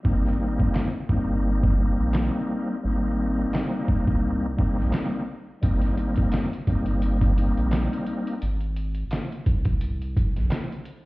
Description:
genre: hip hop, boom-bap hip-hop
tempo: 86 BPM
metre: 4/4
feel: swing 56% on 16ths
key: Ab major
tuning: A4 = 440 Hz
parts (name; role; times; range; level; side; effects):
- bright tonewheel organ; accompaniment; 0.0-8.4 s; G3 to Eb4; -26 LUFS; left 1 dB; chorus vibrato, fast rotary speaker, cassette tape, high-pass filter, low-pass filter
- trip hop sampler-style drum kit; drums; 0.0-11.0 s; handclaps, hi-hat, kick drum, snare drum; -25 LUFS; equal; overdrive
- round analog bass; bass; 0.1-10.5 s; G1 to C2; -25 LUFS; equal; none
room: digital ambience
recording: heard muffled through a wall, stone room reverb, EQ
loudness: -22 LUFS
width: side -20 dB against mid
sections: 0.0-11.1 A section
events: break 0.0-5.6, 8.4-11.1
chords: 0.0 Abmaj7; 8.4 Ab

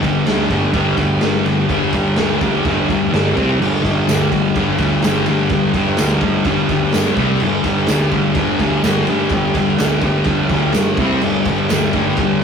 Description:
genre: garage rock duo or trio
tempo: 126 BPM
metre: 4/4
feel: straight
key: unclear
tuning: A4 = 440 Hz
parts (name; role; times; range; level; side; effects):
- thick fuzz guitar; riff; 0.0-12.4 s; G2 to C4; -15 LUFS; left 1 dB; distortion
- fuzz picked electric bass; bass; 0.0-12.3 s; G1 to D2; -25 LUFS; right 1 dB; overdrive
- raw garage drum kit; drums; 0.0-12.3 s; crash cymbal, kick drum, ride cymbal, snare drum; -21 LUFS; right 1 dB; none
- tambourine; percussion; 4.1-11.8 s; none; -32 LUFS; right 8 dB; none
room: wet studio reverb, RT60 0.6 s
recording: rough rehearsal-room recording, warm saturation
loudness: -14 LUFS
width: side -6 dB against mid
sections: 0.0-12.4 A section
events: none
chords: 0.0 G5; 3.4 C5; 3.6 G5; 7.2 C5; 7.4 G5; 11.0 C5; 11.2 G5

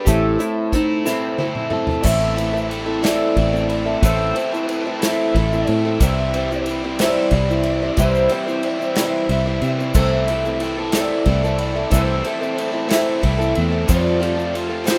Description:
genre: folk rock and heartland rock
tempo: 61 BPM (dotted quarters)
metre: 6/8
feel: straight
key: A minor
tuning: A4 = 439 Hz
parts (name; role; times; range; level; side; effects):
- clean lap steel guitar; second line; 0.0-2.0 s; D#4 to G4; -27 LUFS; equal; none
- picked twelve-string acoustic guitar; accompaniment; 0.0-15.0 s; A2 to C5; -24 LUFS; equal; none
- tonewheel organ; sustained chords; 0.0-15.0 s; none; barely audible; none; none
- overdriven electric guitar; riff; 0.0-15.0 s; F2 to A4; -28 LUFS; equal; none
- fingered electric bass; bass; 0.1-15.0 s; A1 to C3; -24 LUFS; equal; none
- unplugged drum kit; drums; 0.1-15.0 s; crash cymbal, hi-hat, kick drum, ride cymbal, snare drum, toms; -26 LUFS; equal; none
- egg shaker; percussion; 0.1-15.0 s; none; -35 LUFS; equal; none
- lead guitar through a small cranked amp; melody; 2.0-15.0 s; C5 to E5; -28 LUFS; equal; overdrive
room: little or no reverb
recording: rough home demo mix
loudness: -19 LUFS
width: mono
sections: 0.0-2.0 A section; 2.0-15.0 B section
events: electric slide guitar solo 0.0-2.0; drum fill 1.1-2.0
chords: 0.1 Am; 6.0 C; 10.0 Am/C; 13.9 Fadd9

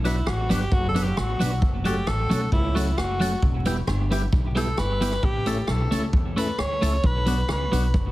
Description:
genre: ska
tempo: 133 BPM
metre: 4/4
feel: straight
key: B minor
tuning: A4 = 440 Hz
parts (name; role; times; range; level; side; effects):
- clean electric guitar; accompaniment; 0.0-7.9 s; F#3 to A4; -28 LUFS; right 1 dB; dub echo
- percussive tonewheel organ; stabs; 0.0-7.8 s; B3 to B4; -33 LUFS; left 2 dB; overdrive, chorus vibrato, slow rotary speaker
- upright bass; bass; 0.0-8.1 s; E1 to E2; -25 LUFS; equal; none
- swinging big-band drum kit; drums; 0.0-8.0 s; hi-hat, kick drum, rim click; -26 LUFS; equal; none
- edgy alto saxophone; melody; 0.1-7.9 s; E4 to C#5; -29 LUFS; equal; dub echo
- tambourine; percussion; 0.1-7.8 s; none; -45 LUFS; right 9 dB; none
room: light reverb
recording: heavily compressed radio sound, vinyl crackle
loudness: -21 LUFS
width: side -17 dB against mid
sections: 0.0-8.1 A section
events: alto saxophone solo 0.0-8.1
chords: 0.0 Bm; 1.6 F#m; 3.4 Em; 5.2 A; 7.0 Bm

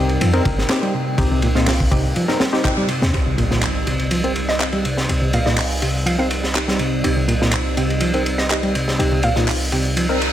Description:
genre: breakbeat, breaks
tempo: 123 BPM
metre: 4/4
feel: straight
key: C minor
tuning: A4 = 439 Hz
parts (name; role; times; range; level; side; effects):
- dark analog pad; sustained chords; 0.0-10.3 s; G3 to G5; -27 LUFS; right 2 dB; chorus, vintage 12-bit sampler grit, sidechain pumping
- overdriven reed electric piano; riff; 0.0-10.2 s; Bb2 to C4; -22 LUFS; equal; vintage 12-bit sampler grit, low-pass filter, tape echo
- filtered dub chord stab; stabs; 0.0-10.2 s; C4 to Bb4; -26 LUFS; left 2 dB; chorus, tape echo
- warm 808-style bass; bass; 0.0-10.3 s; G1 to F2; -22 LUFS; equal; none
- crunchy breakbeat drum kit; drums; 0.1-10.3 s; hi-hat, kick drum, ride cymbal, snare drum; -22 LUFS; equal; high-pass filter on kick, high-pass filter on cymbals, high-pass filter on hats, high-pass filter on snare, high-pass filter on room
- electronic handclaps; drums; 0.7-9.6 s; none; -26 LUFS; right 1 dB; none
- impact and reverse cymbal; sound effects; 3.1-5.1, 10.1-10.3 s; none; -27 LUFS; equal; none
- glassy wavetable pluck; melody; 4.5-9.3 s; Eb5 to F5; -26 LUFS; right 1 dB; chorus, small speaker sound, tape echo
room: light reverb, studio ambience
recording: none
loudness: -16 LUFS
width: side -11 dB against mid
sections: 0.0-3.1 A section; 3.1-10.3 B section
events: filter sweep on reed electric piano 0.0-3.1; band accent 2.6; impact 3.1-5.1; filter sweep on synth stab 3.1-10.3; reverse cymbal 10.1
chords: 0.0 Cm

